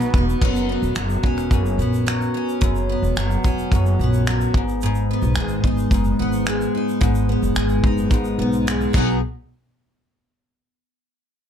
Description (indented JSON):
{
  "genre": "acoustic pop",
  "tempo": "109 BPM",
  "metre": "4/4",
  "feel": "straight",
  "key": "unclear",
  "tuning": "A4 = 438 Hz",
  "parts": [
    { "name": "picked steel-string acoustic guitar", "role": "accompaniment", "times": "0.0-9.2 s", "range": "F#2 to G#4", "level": "-21 LUFS", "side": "equal", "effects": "double-tracked left and right" },
    { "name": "loose indie drum kit", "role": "drums", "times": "0.0-9.1 s", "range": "crash cymbal, finger snaps, kick drum, shaker", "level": "-22 LUFS", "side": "equal", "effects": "none" },
    { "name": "upright bass", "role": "bass", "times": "0.1-9.2 s", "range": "E1 to B1", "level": "-23 LUFS", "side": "equal", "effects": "none" }
  ],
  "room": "light reverb",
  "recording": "dark, warm production",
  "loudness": "-18 LUFS",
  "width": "side -8 dB against mid",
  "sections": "0.4-9.2 A section; 9.2-11.4 B section",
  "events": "none",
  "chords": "0.4 F#sus4; 4.5 G#m; 8.9 B6; 9.2 N.C."
}